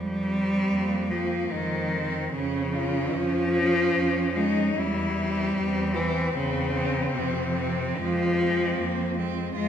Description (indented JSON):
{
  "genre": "classical, lyrical piece for cello ensemble",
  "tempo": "74 BPM",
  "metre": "3/4",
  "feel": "rubato",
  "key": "F minor",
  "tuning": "A4 = 439 Hz",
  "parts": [
    { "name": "clear cello", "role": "accompaniment", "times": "0.0-9.7 s", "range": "C3 to Ab3", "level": "-25 LUFS", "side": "left 1 dB", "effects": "none" },
    { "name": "rich cello", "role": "bass", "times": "0.0-9.7 s", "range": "E2 to F2", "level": "-31 LUFS", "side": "right 3 dB", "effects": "none" },
    { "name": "rich cello", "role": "second line", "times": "0.3-9.7 s", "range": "C4 to F4", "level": "-33 LUFS", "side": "right 9 dB", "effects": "none" },
    { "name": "rich cello", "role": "melody", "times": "0.7-9.7 s", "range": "Ab3 to F4", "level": "-32 LUFS", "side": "left 6 dB", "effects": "none" }
  ],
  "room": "wet recital hall reverb, RT60 1.4 s",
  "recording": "minimal, uncompressed stereo recording",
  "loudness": "-23 LUFS",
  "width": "side -8 dB against mid",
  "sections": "0.0-9.7 A section",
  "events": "none",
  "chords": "0.0 F5; 2.3 Db/F; 4.8 C/E; 7.1 Fm"
}